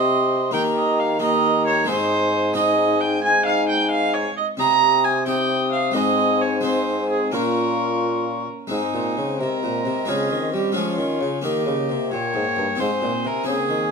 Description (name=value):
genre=classical, renaissance-style consort dance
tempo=88 BPM (dotted quarters)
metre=6/8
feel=straight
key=unclear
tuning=A4 = 441 Hz
part: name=alto recorder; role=melody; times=0.0-13.9 s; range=Db5 to Eb6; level=-28 LUFS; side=left 8 dB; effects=none
part: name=warm viola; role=second line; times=0.0-13.9 s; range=Eb4 to Bb5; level=-22 LUFS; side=right 5 dB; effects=none
part: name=harpsichord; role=accompaniment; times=0.0-13.9 s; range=G2 to F4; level=-26 LUFS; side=left 2 dB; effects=none
part: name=warm trombone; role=accompaniment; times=0.0-13.9 s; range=Bb3 to G4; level=-27 LUFS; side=left 4 dB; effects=none
part: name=clear bassoon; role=bass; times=0.0-13.9 s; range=G2 to G3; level=-26 LUFS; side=equal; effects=none
room=moderate stone room reverb, RT60 0.9 s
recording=none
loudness=-18 LUFS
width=side -5 dB against mid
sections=0.0-8.7 A section; 8.7-13.9 B section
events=none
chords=0.0 Cm; 0.5 Eb; 1.9 Ab; 4.6 Cm; 6.0 Ab; 7.3 Bbm; 8.7 Ab; 10.1 Db; 11.4 Eb; 12.8 Ab